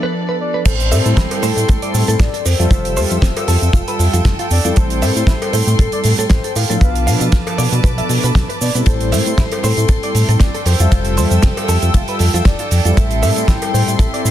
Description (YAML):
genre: nu-disco, nu disco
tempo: 117 BPM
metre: 4/4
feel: swing 55% on 16ths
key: A minor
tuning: A4 = 440 Hz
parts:
  - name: mellow synth brass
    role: accompaniment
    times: 0.0-14.3 s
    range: F3 to E5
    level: -22 LUFS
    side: left 1 dB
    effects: chorus, cassette tape, sidechain pumping, tape echo
  - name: warm chamber string section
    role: sustained chords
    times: 0.0-14.3 s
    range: B3 to E6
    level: -25 LUFS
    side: right 1 dB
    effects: sidechain pumping
  - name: direct-recorded clean electric guitar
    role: riff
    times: 0.0-14.2 s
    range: C4 to F5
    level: -26 LUFS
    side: right 2 dB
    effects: lush chorus, vintage 12-bit sampler grit, tape echo
  - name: soft octave-layered synth lead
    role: melody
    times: 0.4-14.3 s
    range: A4 to G5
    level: -24 LUFS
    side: left 2 dB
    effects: chorus, phaser, cassette tape, analog delay
  - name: chorused synth bass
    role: bass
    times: 0.7-14.3 s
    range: F1 to B2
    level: -16 LUFS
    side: equal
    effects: none
  - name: damped 70s drum kit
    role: drums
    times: 0.7-14.3 s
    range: crash cymbal, hi-hat, ride cymbal, shaker, snare drum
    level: -22 LUFS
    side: right 3 dB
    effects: small room ambience
  - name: kick drum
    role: drums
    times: 0.7-14.1 s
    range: none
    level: -14 LUFS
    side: equal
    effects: small room ambience
  - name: cowbell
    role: percussion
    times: 0.9-13.7 s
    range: none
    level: -28 LUFS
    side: left 3 dB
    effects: none
room: studio ambience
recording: dense, heavily limited modern master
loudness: -12 LUFS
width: side -12 dB against mid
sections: 0.7-14.3 A section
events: drop 0.7-14.3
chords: 0.0 Bm7b5; 0.7 Am7; 2.5 Fmaj9; 4.8 Am7; 6.8 Bm7b5; 8.9 Am7; 10.7 Fmaj9; 13.0 Am7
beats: 0.15 | 0.66 1.17 1.69 2.20 | 2.71 3.23 3.74 4.25 | 4.76 5.28 5.79 6.30 | 6.82 7.33 7.84 8.35 | 8.87 9.38 9.89 10.40 | 10.92 11.43 11.94 12.46 | 12.97 13.48 13.99